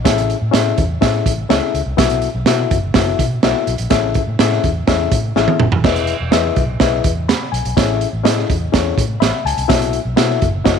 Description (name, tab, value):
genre	uptempo 1960s-style soul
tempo	124 BPM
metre	4/4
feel	straight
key	unclear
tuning	A4 = 440 Hz
part	reed electric piano	accompaniment	0.0-10.8 s	B3 to B5	-18 LUFS	left 15 dB	none
part	vintage muted fingered electric bass	bass	0.1-10.8 s	E1 to B2	-21 LUFS	equal	none
part	crunchy breakbeat drum kit	drums	0.1-10.8 s	crash cymbal, hi-hat, kick drum, snare drum, toms	-16 LUFS	right 5 dB	none
room	light reverb, small room ambience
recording	1960s-style stereo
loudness	-14 LUFS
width	side -7 dB against mid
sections	0.0-10.8 A section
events	drum fill 5.4-5.8; reed electric piano fill 9.0-9.7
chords	0.1 Amaj7; 2.0 B7sus4; 3.9 Amaj7; 5.8 Emaj7; 7.8 Amaj7; 9.7 B7sus4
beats	| 0.06 0.54 1.02 1.50 | 1.99 2.47 2.95 3.43 | 3.91 4.39 4.88 5.36 | 5.84 6.32 6.80 7.29 | 7.77 8.25 8.73 9.21 | 9.69 10.18 10.66